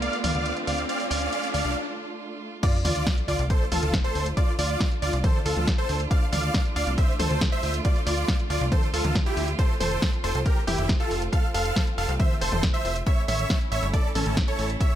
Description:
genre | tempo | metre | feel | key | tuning
uplifting trance | 138 BPM | 4/4 | straight | D minor | A4 = 440 Hz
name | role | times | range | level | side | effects
big supersaw lead | melody | 0.0-15.0 s | C#4 to F5 | -29 LUFS | right 1 dB | sidechain pumping, ping-pong delay
rich chamber string section | sustained chords | 0.0-15.0 s | A3 to F4 | -36 LUFS | right 3 dB | sidechain pumping
plucky analog bass | bass | 0.0-14.8 s | F1 to D2 | -28 LUFS | equal | sidechain pumping
punchy analog drum machine | drums | 0.0-14.9 s | crash cymbal, hi-hat, snare drum, toms | -30 LUFS | equal | sidechain pumping on hats, sidechain pumping on toms, sidechain pumping on cymbals
riser and sub drop | sound effects | 0.0-4.4 s | none | -32 LUFS | equal | none
wide unison pluck | second line | 2.6-15.0 s | G4 to F5 | -35 LUFS | equal | sidechain pumping, ping-pong delay
electronic kick drum | drums | 2.6-14.9 s | none | -24 LUFS | equal | none
room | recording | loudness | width
light reverb, digital ambience | none | -22 LUFS | side -11 dB against mid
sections
0.0-2.6 A section; 2.6-15.0 B section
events
build-up 0.0-2.6; riser 0.0-1.8; break 1.8-2.6; drop 2.6-15.0; impact 2.6-4.4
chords
0.0 Dm; 9.6 F; 13.1 A

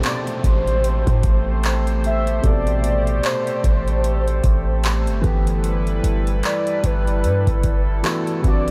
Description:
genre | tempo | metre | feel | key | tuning
contemporary R&B | 75 BPM | 4/4 | swing 58% on 16ths | unclear | A4 = 441 Hz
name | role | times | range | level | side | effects
dark baby grand piano | accompaniment | 0.0-8.7 s | B2 to A4 | -30 LUFS | equal | none
chorused pulse-width pad | sustained chords | 0.0-8.7 s | F#3 to C5 | -29 LUFS | equal | sidechain pumping
booming analog drum machine | drums | 0.0-8.7 s | handclaps, hi-hat, kick drum | -24 LUFS | equal | overdrive
downlifter | sound effects | 0.0-5.6 s | none | -42 LUFS | equal | none
warm velvety synth lead | melody | 0.1-8.7 s | B4 to E5 | -28 LUFS | equal | chorus, delay
warm 808-style bass | bass | 0.4-8.7 s | F#1 to A2 | -23 LUFS | equal | none
room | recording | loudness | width
moderate cathedral reverb, RT60 7.1 s | dreamy mix soaked in reverb | -19 LUFS | mono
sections
0.0-8.7 A section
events
none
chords
0.0 Am9; 5.2 G69

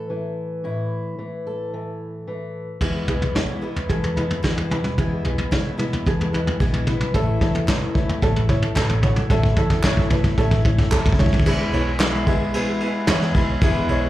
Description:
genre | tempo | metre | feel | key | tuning
indie folk with a building arrangement | 111 BPM | 4/4 | straight | E major | A4 = 440 Hz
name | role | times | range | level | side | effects
fingerpicked steel-string acoustic guitar | accompaniment | 0.0-9.3 s | E2 to B4 | -30 LUFS | left 1 dB | slapback echo
picked old ladder-braced acoustic guitar | accompaniment | 2.8-14.1 s | E2 to E4 | -28 LUFS | left 4 dB | slapback echo
ukulele | arpeggios | 2.8-14.1 s | G#4 to C#5 | -29 LUFS | right 5 dB | tape echo, slapback echo
hollow-body short-scale fingered electric bass | bass | 2.8-14.1 s | E1 to E2 | -24 LUFS | equal | none
vintage brush drum kit | drums | 2.8-14.0 s | crash cymbal, kick drum, ride cymbal, snare drum, toms | -21 LUFS | equal | none
warm upright piano | accompaniment | 7.1-14.1 s | A1 to F#5 | -27 LUFS | left 2 dB | slapback echo
group handclap | percussion | 7.7-13.2 s | none | -30 LUFS | right 1 dB | none
hand-pumped harmonium | sustained chords | 11.5-14.1 s | E4 to G#5 | -31 LUFS | right 2 dB | none
room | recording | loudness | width
small room ambience | live gig heard through the venue's PA, club reverb | -18 LUFS | side -15 dB against mid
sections
0.0-2.8 A section; 2.8-11.5 B section; 11.5-14.1 C section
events
build-up 2.8-11.5; drum fill 2.8-11.5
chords
0.0 A5; 2.8 E; 7.1 A; 11.5 E

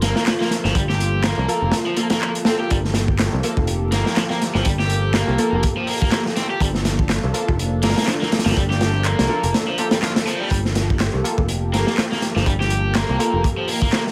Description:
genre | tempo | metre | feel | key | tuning
breakbeat, breaks | 123 BPM | 4/4 | swing 57% on 16ths | G minor | A4 = 439 Hz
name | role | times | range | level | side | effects
phased analog pad | sustained chords | 0.0-14.1 s | F3 to A4 | -30 LUFS | equal | phaser, chorus, sidechain pumping
raw garage guitar | riff | 0.0-14.0 s | F3 to G4 | -26 LUFS | equal | overdrive, vintage 12-bit sampler grit, low-pass filter, digital delay
picked electric bass | bass | 0.0-13.4 s | F1 to C2 | -24 LUFS | equal | none
crunchy breakbeat drum kit | drums | 0.0-14.1 s | hi-hat, kick drum, snare drum | -24 LUFS | equal | none
electronic handclaps | drums | 0.3-14.0 s | none | -31 LUFS | equal | none
orchestra-hit-like synth stab | stabs | 1.5-13.4 s | Bb3 to A4 | -29 LUFS | equal | built-in reverb, digital delay
reverse cymbal | sound effects | 10.1-10.5 s | none | -38 LUFS | equal | none
room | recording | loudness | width
light reverb, small room reverb | vinyl crackle | -20 LUFS | mono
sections
0.0-14.1 A section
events
reverse cymbal 10.1-10.5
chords
0.0 Gm9

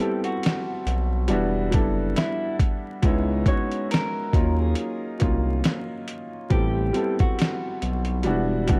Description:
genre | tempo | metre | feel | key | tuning
lo-fi hip hop | 69 BPM | 4/4 | swing 57% on 16ths | unclear | A4 = 440 Hz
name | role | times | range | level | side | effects
electric guitar through a small old amp | melody | 0.0-8.5 s | E4 to C#5 | -33 LUFS | equal | low-pass filter, tape echo
clear upright piano | accompaniment | 0.0-8.8 s | F#3 to A4 | -29 LUFS | equal | cassette tape, low-pass filter
dusty soul sampler-style drum kit | drums | 0.2-8.8 s | hi-hat, kick drum, snare drum | -26 LUFS | equal | overdrive
smooth synth bass | bass | 0.9-8.8 s | E1 to D#2 | -27 LUFS | equal | none
room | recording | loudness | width
digital ambience | vinyl crackle | -24 LUFS | mono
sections
0.0-8.8 A section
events
none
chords
0.0 Am9; 1.3 Em9; 3.0 C#m9; 4.3 D#m9; 6.5 Am9; 8.2 Em9

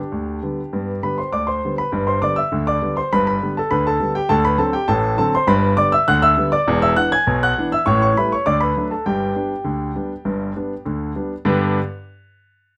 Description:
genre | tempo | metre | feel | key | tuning
ragtime piano | 101 BPM | 2/4 | straight | G major | A4 = 440 Hz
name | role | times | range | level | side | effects
clear grand piano | solo | 0.0-11.8 s | E1 to G#6 | -19 LUFS | equal | none
room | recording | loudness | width
moderate studio reverb, RT60 0.6 s | rough home demo mix | -19 LUFS | mono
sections
0.0-1.9 A section; 1.9-11.4 A section; 11.4-12.6 B section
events
none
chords
0.0 G; 4.3 D7; 5.5 G; 6.7 E7; 7.8 A7; 8.4 D; 9.0 G

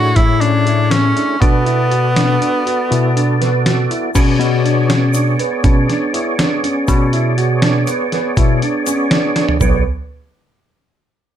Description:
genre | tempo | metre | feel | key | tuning
progressive instrumental, band music in an uneven meter | 242 BPM (eighths) | 11/8 | straight | B dorian | A4 = 441 Hz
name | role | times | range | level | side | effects
breathy tenor saxophone | melody | 0.0-3.6 s | B3 to F#4 | -17 LUFS | equal | ping-pong delay
percussive tonewheel organ | accompaniment | 0.0-9.8 s | A3 to D5 | -20 LUFS | equal | overdrive, chorus vibrato, slow rotary speaker
dark baby grand piano | arpeggios | 0.0-9.8 s | B3 to F#4 | -20 LUFS | right 3 dB | none
bell-like tine electric piano | bass | 0.0-9.8 s | B1 to B2 | -16 LUFS | moving between left 7 dB and right 3 dB | auto-pan
dusty soul sampler-style drum kit | drums | 0.2-9.7 s | crash cymbal, hi-hat, kick drum, snare drum, toms | -17 LUFS | equal | none
tube shaker | percussion | 4.1-9.8 s | none | -28 LUFS | left 7 dB | none
room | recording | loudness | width
moderate studio reverb, RT60 0.7 s | dark, warm production | -12 LUFS | side -10 dB against mid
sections
0.0-4.1 A section; 4.1-9.6 B section; 9.6-11.4 C section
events
break 3.9; drum fill 9.4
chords
0.0 Amaj7; 1.4 Bm7; 4.1 Bm69

